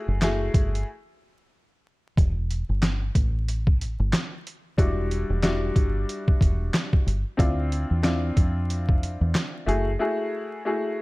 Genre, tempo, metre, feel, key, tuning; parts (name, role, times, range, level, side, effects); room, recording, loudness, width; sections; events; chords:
hip hop, boom-bap hip-hop; 92 BPM; 4/4; swing 59% on 16ths; A4 = 440 Hz
clear upright piano; accompaniment; 0.0-11.0 s; G3 to G#4; -28 LUFS; left 2 dB; high-pass filter, low-pass filter
deep dub fingered electric bass; bass; 0.1-10.0 s; E1 to F2; -25 LUFS; equal
trip hop sampler-style drum kit; drums; 0.2-9.9 s; handclaps, hi-hat, kick drum, snare drum; -22 LUFS; equal
little or no reverb; dark, warm production, vinyl crackle; -22 LUFS; side -22 dB against mid
0.0-11.0 A section
break 0.9-2.2, 10.0-11.0
0.0 F#m9; 2.2 Em9; 7.4 Dm9; 9.7 F#m9